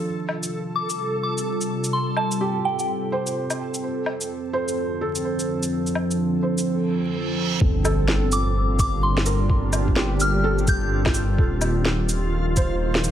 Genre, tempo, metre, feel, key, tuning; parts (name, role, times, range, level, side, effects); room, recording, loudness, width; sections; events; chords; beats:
future garage; 127 BPM; 4/4; swing 63% on 16ths; G minor; A4 = 439 Hz
felt-muted upright piano; accompaniment; 0.0-13.1 s; D4 to C5; -31 LUFS; right 1 dB; sidechain pumping, digital delay
warbly tape-like pad; sustained chords; 0.0-13.1 s; F2 to A4; -26 LUFS; right 1 dB; chorus, built-in reverb, sidechain pumping
backwards swelling texture; texture; 0.0-13.1 s; F4 to A4; -34 LUFS; right 1 dB; built-in reverb
electronic woodblock, shaker, cabasa and snare drum; drums; 0.3-13.1 s; -26 LUFS; equal; studio reverb
soft synth bell; melody; 0.8-2.9, 8.3-11.4 s; G5 to G6; -27 LUFS; equal; chorus, phaser, tape echo
reverse cymbal and sub drop; sound effects; 6.9-9.5 s; -31 LUFS; right 2 dB
dark detuned saw bass; bass; 7.6-13.1 s; Eb1 to G1; -23 LUFS; equal; sidechain pumping
electronic kick drum; drums; 7.6-12.7 s; -21 LUFS; equal; studio reverb
moderate scoring stage reverb, RT60 1.7 s; vinyl crackle; -20 LUFS; side -10 dB against mid
0.0-7.6 A section; 7.6-13.1 B section
filter sweep on ambient pad 0.0-7.6; reverse cymbal 6.9-7.6; impact 7.6-9.5
0.0 Fadd9; 3.8 Dm/F; 7.6 Gmadd9; 11.4 Ebsus2
| 0.05 0.52 0.99 1.47 | 1.94 2.41 2.88 3.36 | 3.83 4.30 4.77 5.25 | 5.72 6.19 6.66 7.14 | 7.61 8.08 8.55 9.03 | 9.50 9.97 10.44 10.92 | 11.39 11.86 12.33 12.80